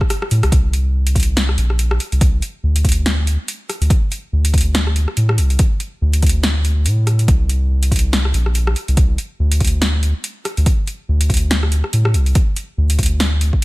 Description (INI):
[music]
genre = deep dubstep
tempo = 142 BPM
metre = 4/4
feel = swing 57% on 16ths, half-time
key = unclear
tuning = A4 = 442 Hz
[part]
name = deep house drum kit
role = drums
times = 0.0-13.6 s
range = hi-hat, rim click, snare drum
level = -21 LUFS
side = equal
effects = overdrive, studio reverb
[part]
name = electronic kick drum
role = drums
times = 0.0-13.6 s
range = none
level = -15 LUFS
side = equal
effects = overdrive, studio reverb
[part]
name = soft dub sub bass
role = bass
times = 0.3-13.5 s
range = Bb1 to A2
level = -15 LUFS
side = equal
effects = tube saturation
[sound]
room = little or no reverb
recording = none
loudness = -14 LUFS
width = side -21 dB against mid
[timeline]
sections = 0.0-13.6 A section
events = drum fill 0.0-0.5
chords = none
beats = 0.10 | 0.52 0.94 1.37 1.79 | 2.21 2.63 3.06 3.48 | 3.90 4.33 4.75 5.17 | 5.59 6.02 6.44 6.86 | 7.28 7.71 8.13 8.55 | 8.97 9.40 9.82 10.24 | 10.66 11.09 11.51 11.93 | 12.35 12.78 13.20 13.62